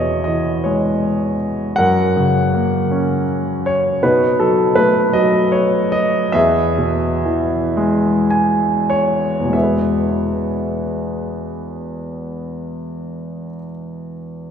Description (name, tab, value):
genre	classical, lyrical solo piano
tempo	31-54 BPM (dotted quarters)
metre	6/8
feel	rubato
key	E major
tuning	A4 = 440 Hz
part	clear concert grand piano	solo	0.0-14.5 s	E2 to G#5	-15 LUFS	equal	none
room	wet cathedral reverb, RT60 4.9 s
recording	recorded in a church or concert hall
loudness	-14 LUFS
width	side -8 dB against mid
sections	0.0-9.5 A section; 9.5-13.3 B section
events	slowing down 4.0-9.5; grand piano fill 7.8-9.5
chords	0.0 E6; 1.8 F#; 4.0 B7; 6.4 E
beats	0.63 | 1.78 2.91 | 4.03 5.15 | 6.36 7.78 | 9.54 11.45